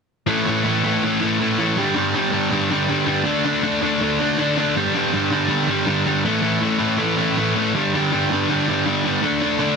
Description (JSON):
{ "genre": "punk", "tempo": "161 BPM", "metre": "4/4", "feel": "straight", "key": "unclear", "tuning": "A4 = 440 Hz", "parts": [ { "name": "overdriven electric guitar", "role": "solo", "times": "0.3-9.8 s", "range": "G2 to D4", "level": "-17 LUFS", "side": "equal", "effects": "none" } ], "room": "light reverb", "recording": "dense, heavily limited modern master", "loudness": "-17 LUFS", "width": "side -5 dB against mid", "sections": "0.3-9.8 A section", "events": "none", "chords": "0.3 A5; 1.8 G5; 3.3 D5; 4.8 G5; 6.2 A5; 7.7 G5; 9.2 D5" }